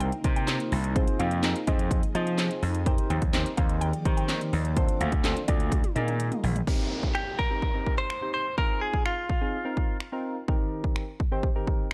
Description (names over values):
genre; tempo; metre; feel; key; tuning
dance-pop; 126 BPM; 4/4; straight; C minor; A4 = 442 Hz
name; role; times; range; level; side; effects
mallet-like synth pluck; melody; 0.0-6.3 s; D5 to G5; -40 LUFS; equal; chorus, phaser, sidechain pumping, analog delay
soft electric-piano-like synth keys; accompaniment; 0.0-11.9 s; Eb3 to D5; -36 LUFS; equal; chorus
ethereal airy pad; sustained chords; 0.1-6.7 s; C3 to D5; -41 LUFS; equal; none
gritty slap bass; bass; 0.0-6.6 s; Bb1 to F3; -30 LUFS; equal; overdrive, sidechain pumping
house drum kit; drums; 0.0-11.9 s; crash cymbal, finger snaps, handclaps, hi-hat, kick drum, snare drum, toms; -30 LUFS; equal; none
downlifter; sound effects; 6.7-10.5 s; none; -43 LUFS; equal; none
direct-recorded clean electric guitar; melody; 7.1-10.0 s; F4 to C5; -32 LUFS; equal; none
room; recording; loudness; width
little or no reverb; dry, gritty hardware recording; -27 LUFS; mono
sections
0.0-6.7 A section; 6.7-11.9 B section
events
drop 0.0-6.7; drum fill 5.7-6.7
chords
0.0 Cm7; 1.0 Fm7; 2.9 Cm7/Eb; 4.8 Dm7; 5.7 Bb7sus4; 6.7 Cm7; 8.6 Fm7; 10.5 Cm7/Eb